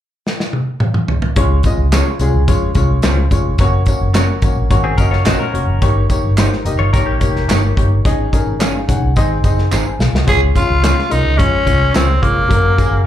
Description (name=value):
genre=uptempo 1960s-style soul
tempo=108 BPM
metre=4/4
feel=straight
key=Db major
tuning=A4 = 440 Hz
part: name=natural country drum kit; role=drums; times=0.3-12.9 s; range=hi-hat, kick drum, snare drum, toms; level=-16 LUFS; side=equal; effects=none
part: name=warm baby grand piano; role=accompaniment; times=1.4-13.0 s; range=Gb3 to Bb5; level=-20 LUFS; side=left 4 dB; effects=slapback echo
part: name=vintage muted fingered electric bass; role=bass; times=1.4-13.1 s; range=F1 to F2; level=-15 LUFS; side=equal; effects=none
part: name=tambourine and handclaps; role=percussion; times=1.6-12.9 s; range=none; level=-29 LUFS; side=right 2 dB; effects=slapback echo
part: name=electric guitar through a small old amp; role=stabs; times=1.9-12.1 s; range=Bb3 to Db5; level=-24 LUFS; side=right 8 dB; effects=analog chorus, slapback echo
part: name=direct-recorded clean electric guitar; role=riff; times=4.8-7.9 s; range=Bb3 to Db5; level=-22 LUFS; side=left 5 dB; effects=spring reverb, slapback echo
part: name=raspy tenor saxophone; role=melody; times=10.3-13.1 s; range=Bb3 to Ab4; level=-16 LUFS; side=equal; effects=slapback echo
room=small room ambience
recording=live gig heard through the venue's PA, club reverb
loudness=-12 LUFS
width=side -11 dB against mid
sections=0.0-1.4 A section; 1.4-10.3 B section; 10.3-13.1 C section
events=drum fill 0.2-1.4, 9.7-10.3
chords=0.0 N.C.; 1.4 Db; 3.6 Gb; 5.8 Eb7; 8.1 Absus4; 9.2 Ab; 10.3 Db; 12.5 Gb